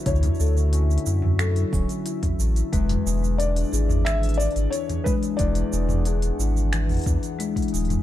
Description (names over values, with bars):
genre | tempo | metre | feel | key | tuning
folktronica | 90 BPM | 4/4 | straight | unclear | A4 = 440 Hz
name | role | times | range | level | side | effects
warbly tape-like pad | sustained chords | 0.0-8.0 s | D3 to F#5 | -33 LUFS | left 1 dB | chorus, built-in reverb
concert harp | arpeggios | 0.0-8.0 s | E2 to E4 | -31 LUFS | left 3 dB | tape echo
felt-muted upright piano | melody | 0.1-6.0 s | B4 to E5 | -30 LUFS | left 3 dB | tape echo
warm sub bass | bass | 0.1-8.0 s | D1 to F#2 | -22 LUFS | equal | none
electronic kick drum | drums | 0.1-7.7 s | none | -26 LUFS | equal | none
organic electronic drum kit | drums | 0.1-8.0 s | finger snaps, hi-hat, shaker, toms | -29 LUFS | right 2 dB | none
marimba with soft mallets | second line | 0.4-7.7 s | G#3 to A4 | -31 LUFS | left 8 dB | tape echo
room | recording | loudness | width
digital ambience | none | -20 LUFS | side -13 dB against mid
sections
0.0-8.0 A section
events
none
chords
0.0 Dmaj9; 2.7 E7